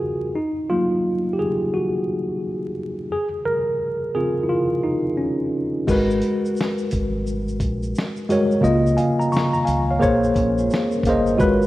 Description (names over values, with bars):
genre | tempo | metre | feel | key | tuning
lo-fi hip hop | 87 BPM | 4/4 | swing 63% on 16ths | Db major | A4 = 440 Hz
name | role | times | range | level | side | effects
tine electric piano | accompaniment | 0.0-11.7 s | Db3 to Db6 | -19 LUFS | equal | medium stereo tremolo, cassette tape
deep dub fingered electric bass | bass | 5.9-11.7 s | G1 to Db2 | -26 LUFS | equal | none
lo-fi sampler-style drum kit | drums | 5.9-11.7 s | crash cymbal, hi-hat, kick drum, shaker, snare drum | -26 LUFS | equal | none
vibraphone with soft mallets | second line | 10.4-11.6 s | F3 to Db5 | -30 LUFS | right 4 dB | tape echo
room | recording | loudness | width
moderate lush hall reverb, RT60 2.6 s | rough home demo mix, vinyl crackle | -19 LUFS | side -16 dB against mid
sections
0.0-5.9 A section; 5.9-11.7 B section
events
tine electric piano solo 0.0-5.9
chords
0.4 Gbmaj7; 3.1 Dbmaj7; 5.9 Abm9; 8.6 Db69; 10.0 Bbm9